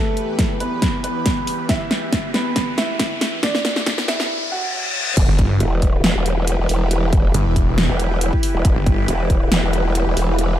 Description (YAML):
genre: heavy wobble dubstep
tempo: 138 BPM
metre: 4/4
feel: swing 53% on 16ths, half-time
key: E minor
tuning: A4 = 440 Hz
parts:
  - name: warm concert grand piano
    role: melody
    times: 0.0-5.1 s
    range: A3 to F#5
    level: -25 LUFS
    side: right 2 dB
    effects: tape echo
  - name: supersaw pad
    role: sustained chords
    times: 0.0-10.6 s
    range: E2 to B4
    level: -27 LUFS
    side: equal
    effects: phaser, sidechain pumping
  - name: riser, reverse cymbal and impact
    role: sound effects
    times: 1.5-6.9 s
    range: none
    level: -27 LUFS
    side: left 1 dB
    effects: none
  - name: big-room dance drum kit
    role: drums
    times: 0.2-10.5 s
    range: crash cymbal, hi-hat, snare drum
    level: -22 LUFS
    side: equal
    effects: small room ambience
  - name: electronic kick drum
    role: drums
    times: 0.4-9.4 s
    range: none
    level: -19 LUFS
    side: equal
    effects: small room ambience
  - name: growl bass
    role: bass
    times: 5.2-10.6 s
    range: E1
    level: -19 LUFS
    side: equal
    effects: chorus, overdrive
  - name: snarling distorted saw bass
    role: bass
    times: 5.3-9.1 s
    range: E1 to G1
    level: -18 LUFS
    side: equal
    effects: distortion, overdrive
room: light reverb, digital ambience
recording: dark, warm production, high-pass filter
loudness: -16 LUFS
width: side -12 dB against mid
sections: 0.0-5.2 A section; 5.2-10.6 B section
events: build-up 0.0-5.2; drum fill 0.0-4.3; filter sweep 0.0-5.2; riser 1.5-5.2; break 4.3-5.2; reverse cymbal 4.3-5.2; drop 5.2-10.6; impact 5.2-6.9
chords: 0.0 Em